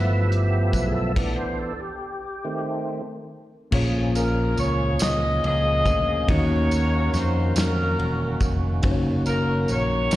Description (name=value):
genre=slow gospel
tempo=47 BPM (dotted quarters)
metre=6/8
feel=straight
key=unclear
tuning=A4 = 440 Hz
part: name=mellow tine electric piano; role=accompaniment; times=0.0-10.2 s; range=G2 to Eb5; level=-27 LUFS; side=left 1 dB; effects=slow stereo tremolo
part: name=mellow French horn section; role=sustained chords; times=0.0-1.1 s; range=F3 to E5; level=-41 LUFS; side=left 1 dB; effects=none
part: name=overdriven tonewheel organ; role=sustained chords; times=0.0-10.2 s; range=Eb3 to E5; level=-29 LUFS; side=right 2 dB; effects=chorus vibrato, slow rotary speaker
part: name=fingered electric bass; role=bass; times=0.0-10.2 s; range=Fb1 to F2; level=-23 LUFS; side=equal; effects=none
part: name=warm soul drum kit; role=drums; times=0.3-10.2 s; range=crash cymbal, hi-hat, kick drum, ride cymbal, snare drum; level=-27 LUFS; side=equal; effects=none
part: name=tambourine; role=percussion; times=0.7-10.2 s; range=none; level=-35 LUFS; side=right 3 dB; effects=none
part: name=mellow saxophone section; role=melody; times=4.2-10.2 s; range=Db4 to Eb5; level=-25 LUFS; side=left 1 dB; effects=slapback echo
room=light reverb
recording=live gig heard through the venue's PA, recital hall reverb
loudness=-20 LUFS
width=side -15 dB against mid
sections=0.0-3.7 A section; 3.7-10.2 B section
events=tonewheel organ solo 0.0-3.7; stop 1.2-3.7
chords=0.0 G13; 1.2 Em7; 2.4 Adim/Eb; 3.7 Bbm7; 6.3 Ebm7; 8.8 Gb6